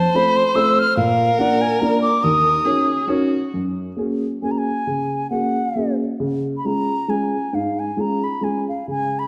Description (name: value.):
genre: musette waltz.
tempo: 133-145 BPM.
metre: 3/4.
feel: swing 54% on 8ths, rubato.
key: F# major from 3.5 s.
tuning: A4 = 439 Hz.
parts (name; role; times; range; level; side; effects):
wooden flute; melody; 0.0-9.3 s; F5 to F6; -23 LUFS; equal; none.
rich violin; second line; 0.0-3.5 s; Gb4 to C5; -25 LUFS; equal; none.
dark upright piano; accompaniment; 0.0-9.2 s; Eb2 to D5; -23 LUFS; equal; none.
room: wet concert hall reverb, RT60 1.9 s.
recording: dark, warm production.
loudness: -20 LUFS.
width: mono.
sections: 0.0-3.5 A section; 3.5-9.3 B section.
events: none.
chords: 0.0 F; 1.0 Bb; 2.2 Ebm7; 3.5 F#add9; 6.2 C#.